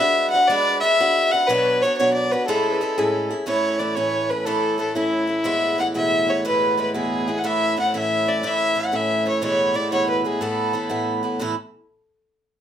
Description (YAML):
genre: celtic folk, Celtic jig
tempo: 121 BPM (dotted quarters)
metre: 6/8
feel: straight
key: A major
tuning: A4 = 439 Hz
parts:
  - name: dark fiddle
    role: melody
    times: 0.0-11.1 s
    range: E4 to F#5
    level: -20 LUFS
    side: left 1 dB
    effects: none
  - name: picked swing-style acoustic guitar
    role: accompaniment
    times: 0.0-11.5 s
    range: E2 to C#5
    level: -24 LUFS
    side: right 2 dB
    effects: none
  - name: mellow accordion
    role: drone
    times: 3.5-11.4 s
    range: A2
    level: -30 LUFS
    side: left 1 dB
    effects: none
room: wet small room reverb, RT60 0.6 s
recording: none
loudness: -18 LUFS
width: side -9 dB against mid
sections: 0.0-3.5 A section; 3.5-11.4 B section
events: none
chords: 0.0 G#m7b5; 1.5 Bmadd9; 2.5 Amaj7; 3.5 A; 5.5 E; 7.4 A; 9.4 E; 10.4 Asus2; 11.4 A